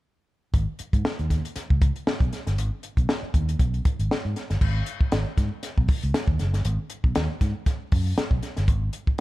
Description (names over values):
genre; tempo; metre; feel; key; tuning
funk; 118 BPM; 4/4; swing 56% on 16ths; unclear; A4 = 440 Hz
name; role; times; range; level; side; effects
fingered electric bass; bass; 0.5-9.1 s; F#1 to G#2; -26 LUFS; equal; none
compact cocktail drum kit; drums; 0.5-9.2 s; crash cymbal, hi-hat, kick drum, snare drum; -24 LUFS; equal; none
room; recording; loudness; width
little or no reverb; dark, warm production; -22 LUFS; side -18 dB against mid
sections
0.5-4.6 A section; 4.6-9.2 B section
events
none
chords
none